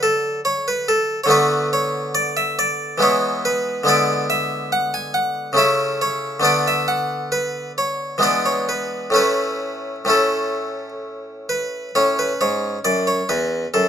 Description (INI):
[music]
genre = classical, baroque-style suite movement for harpsichord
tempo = 64-71 BPM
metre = 3/4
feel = rubato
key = A major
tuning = A4 = 440 Hz
[part]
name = harpsichord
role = solo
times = 0.0-13.9 s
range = E2 to G#5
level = -17 LUFS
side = equal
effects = none
[sound]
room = light reverb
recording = none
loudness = -17 LUFS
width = side -8 dB against mid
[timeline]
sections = 0.0-11.9 A section; 11.9-13.9 B section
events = none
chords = 0.0 D; 1.3 Bm7/D; 3.0 E; 3.9 E7/D; 5.6 A/C#; 6.5 Bm7/D; 8.2 E7; 9.2 A